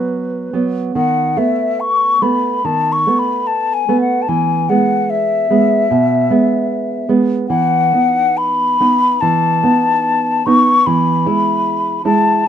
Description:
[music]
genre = romantic duo for flute and classical guitar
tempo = 73 BPM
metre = 4/4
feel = uneven beats, rubato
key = E major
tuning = A4 = 442 Hz
[part]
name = mellow hollow silver concert flute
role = melody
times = 0.0-12.5 s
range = B4 to C#6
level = -14 LUFS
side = left 4 dB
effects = none
[part]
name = nylon-string guitar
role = accompaniment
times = 0.0-12.4 s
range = B2 to E4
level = -16 LUFS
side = right 4 dB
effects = none
[sound]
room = light reverb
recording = minimal, uncompressed stereo recording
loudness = -12 LUFS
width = side -9 dB against mid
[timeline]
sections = 0.0-12.5 A section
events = none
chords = 0.0 B5; 1.0 B7/D#; 4.3 E; 7.5 B7/E; 10.9 E

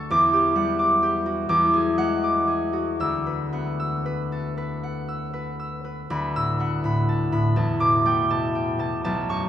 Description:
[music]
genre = classical, solo harp piece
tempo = 38-44 BPM (dotted quarters)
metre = 6/8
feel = rubato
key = D major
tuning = A4 = 442 Hz
[part]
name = concert harp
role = solo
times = 0.0-9.5 s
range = B1 to E6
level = -21 LUFS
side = equal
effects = none
[sound]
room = wet cathedral reverb, RT60 4.6 s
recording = none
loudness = -21 LUFS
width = side -10 dB against mid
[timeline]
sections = 0.0-6.1 A section; 6.1-9.5 B section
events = none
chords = 0.1 Em9; 1.5 E9; 3.0 D69; 7.6 Em11

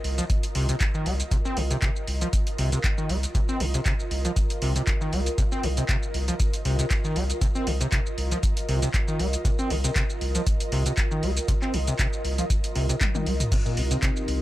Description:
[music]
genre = acid house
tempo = 118 BPM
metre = 4/4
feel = swing 54% on 16ths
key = C minor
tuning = A4 = 443 Hz
[part]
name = saturated sub bass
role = bass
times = 0.0-14.4 s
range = C2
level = -27 LUFS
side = equal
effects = tube saturation, sidechain pumping
[part]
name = punchy analog drum machine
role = drums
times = 0.0-14.4 s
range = crash cymbal, handclaps, hi-hat, shaker, toms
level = -31 LUFS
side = equal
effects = none
[part]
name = ethereal airy pad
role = texture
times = 0.0-14.4 s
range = F4 to Eb5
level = -33 LUFS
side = equal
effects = ensemble chorus, built-in reverb, tremolo, sidechain pumping
[part]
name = overdriven acid bass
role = riff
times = 0.2-14.1 s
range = Bb2 to C4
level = -29 LUFS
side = equal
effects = distortion, tube saturation, lush chorus
[part]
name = electronic kick drum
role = drums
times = 0.3-14.1 s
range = none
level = -25 LUFS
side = equal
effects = overdrive
[part]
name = dark analog pad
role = sustained chords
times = 13.7-14.4 s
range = C4 to G4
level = -33 LUFS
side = left 1 dB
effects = lush chorus, sidechain pumping
[sound]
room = little or no reverb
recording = none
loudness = -22 LUFS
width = side -15 dB against mid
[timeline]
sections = 0.0-14.4 A section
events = drum fill 13.0-13.5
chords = 0.0 Cm

